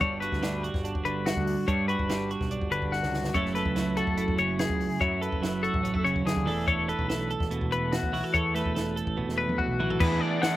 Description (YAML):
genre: math rock and midwest emo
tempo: 144 BPM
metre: 4/4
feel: straight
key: unclear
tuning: A4 = 440 Hz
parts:
  - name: twelve-string electric guitar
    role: accompaniment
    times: 0.0-10.6 s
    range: F#2 to A4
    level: -29 LUFS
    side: right 3 dB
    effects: none
  - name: twelve-string electric guitar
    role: arpeggios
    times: 0.0-10.6 s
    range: F#4 to F#5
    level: -29 LUFS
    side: left 5 dB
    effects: none
  - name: growling picked electric bass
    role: bass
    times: 0.0-10.2 s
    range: E1 to G2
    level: -34 LUFS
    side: equal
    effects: overdrive
  - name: compact cocktail drum kit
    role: drums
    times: 0.0-10.5 s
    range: crash cymbal, hi-hat, kick drum, snare drum, toms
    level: -32 LUFS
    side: equal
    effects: none
  - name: overdriven semi-hollow guitar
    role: riff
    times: 10.0-10.6 s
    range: E3 to G#4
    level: -29 LUFS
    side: right 1 dB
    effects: none
room: little or no reverb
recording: recorded outdoors, with no room sound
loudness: -25 LUFS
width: side -14 dB against mid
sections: 0.0-10.0 A section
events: drum fill 2.9-3.3, 9.2-10.0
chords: 0.0 Gmaj7; 3.3 F#m7; 6.5 E7sus4; 10.0 E9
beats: | 0.01 0.43 0.85 1.26 | 1.68 2.10 2.51 2.93 | 3.34 3.76 4.18 4.59 | 5.01 5.42 5.84 6.26 | 6.67 7.09 7.51 7.92 | 8.34 8.76 9.17 9.59 | 10.01 10.42